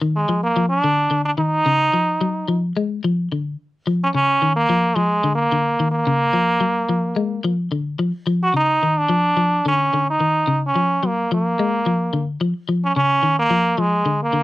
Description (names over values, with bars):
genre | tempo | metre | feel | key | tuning
afrobeat | 109 BPM | 4/4 | straight | Eb minor | A4 = 440 Hz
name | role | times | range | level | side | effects
electric guitar at the edge of break-up | arpeggios | 0.0-14.4 s | Db3 to Ab3 | -21 LUFS | left 2 dB | none
trombone with metal mute | melody | 0.2-14.4 s | Ab3 to Gb4 | -18 LUFS | right 1 dB | none
room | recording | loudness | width
moderate studio reverb, RT60 0.6 s | dry, close 1970s-style studio recording | -17 LUFS | side -17 dB against mid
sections
0.0-14.4 A section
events
none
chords
0.4 Dm; 1.5 Ebm9; 2.6 Ddim; 3.7 Ebsus2; 4.8 Bb; 5.9 Ebm9 (rootless); 7.0 Bb7; 8.1 Ebsus2; 9.2 Dmmaj7; 10.3 Ebm9; 11.4 Bb7; 12.5 Ebsus2; 13.7 Bb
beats
0.42 0.97 | 1.52 2.07 2.62 3.18 | 3.73 4.28 4.83 5.38 | 5.93 6.48 7.04 7.59 | 8.14 8.69 9.24 9.79 | 10.34 10.89 11.45 12.00 | 12.55 13.10 13.65 14.20